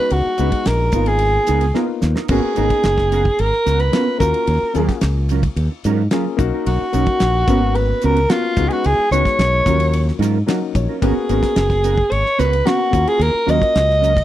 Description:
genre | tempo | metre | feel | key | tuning
electric jazz fusion | 110 BPM | 4/4 | straight | G# dorian | A4 = 439 Hz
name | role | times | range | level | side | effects
growling soprano saxophone | melody | 0.0-14.2 s | E#4 to D#5 | -18 LUFS | right 1 dB | slapback echo
warm grand piano | accompaniment | 0.0-14.2 s | F#3 to F#5 | -23 LUFS | left 9 dB | none
mellow electric guitar | stabs | 0.0-14.2 s | F#3 to B4 | -24 LUFS | right 11 dB | ensemble chorus
modern bright fingered electric bass | bass | 0.1-14.2 s | F#1 to G#2 | -18 LUFS | equal | none
damped 70s drum kit | drums | 0.1-14.2 s | crash cymbal, hi-hat, kick drum, ride cymbal, snare drum | -22 LUFS | equal | none
room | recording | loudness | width
little or no reverb | dry, close 1970s-style studio recording | -14 LUFS | side -13 dB against mid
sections
0.0-2.3 A section; 2.3-14.2 A section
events
drum fill 1.8-2.3; grand piano fill 10.2-11.0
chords
0.0 C#7sus4; 0.9 G#m69; 2.3 G#m11; 4.2 D#m9; 6.4 Bmaj9; 7.5 G#m11; 8.6 C#7sus4; 9.7 D#m9; 11.0 G#m11; 12.9 D#m9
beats
| 0.12 0.67 1.21 1.75 | 2.30 2.85 3.39 3.94 | 4.48 5.02 5.57 6.11 | 6.66 7.20 7.75 8.29 | 8.84 9.38 9.93 10.47 | 11.02 11.56 12.11 12.66 | 13.20 13.75

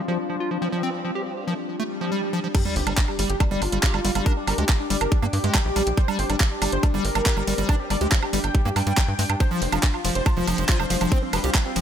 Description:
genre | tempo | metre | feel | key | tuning
psychedelic trance | 140 BPM | 4/4 | straight | unclear | A4 = 441 Hz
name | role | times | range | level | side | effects
formant-sweep wobble bass | second line | 0.0-11.5 s | G3 to G4 | -39 LUFS | right 3 dB | none
evolving wavetable pad | sustained chords | 0.0-11.8 s | G3 to D4 | -34 LUFS | left 2 dB | chorus, built-in reverb, vintage 12-bit sampler grit, sidechain pumping
warbly tape-like pad | texture | 0.0-11.8 s | C4 to D6 | -33 LUFS | left 2 dB | chorus, built-in reverb, sidechain pumping
liquid acid bass | riff | 0.1-11.8 s | F3 to G4 | -28 LUFS | equal | chorus, auto-pan, sidechain pumping, tape echo
swell and sub drop | sound effects | 1.8-4.3 s | none | -33 LUFS | right 2 dB | none
wide unison lead | melody | 2.5-11.8 s | G3 to G5 | -29 LUFS | equal | phaser, sidechain pumping, ping-pong delay
electronic kick drum | drums | 2.5-11.6 s | none | -20 LUFS | equal | overdrive
garage drum kit | drums | 2.5-11.8 s | crash cymbal, handclaps, hi-hat, ride cymbal, woodblock | -26 LUFS | right 3 dB | overdrive
tight sequencer bass | bass | 2.8-11.8 s | F1 to G2 | -26 LUFS | equal | none
room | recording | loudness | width
light reverb | none | -20 LUFS | side -9 dB against mid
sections
0.0-2.5 A section; 2.5-11.8 B section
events
filter sweep on acid bass 0.0-2.5; filter sweep on ambient pad 0.0-2.5; swell 1.8-2.5; drop 2.5-11.8; impact 2.5-4.3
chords
0.0 F5; 2.5 G5; 9.4 F5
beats
0.40 | 0.83 1.26 1.69 2.12 | 2.55 2.97 3.40 3.83 | 4.26 4.69 5.12 5.55 | 5.97 6.40 6.83 7.26 | 7.69 8.12 8.55 8.97 | 9.40 9.83 10.26 10.69 | 11.12 11.55

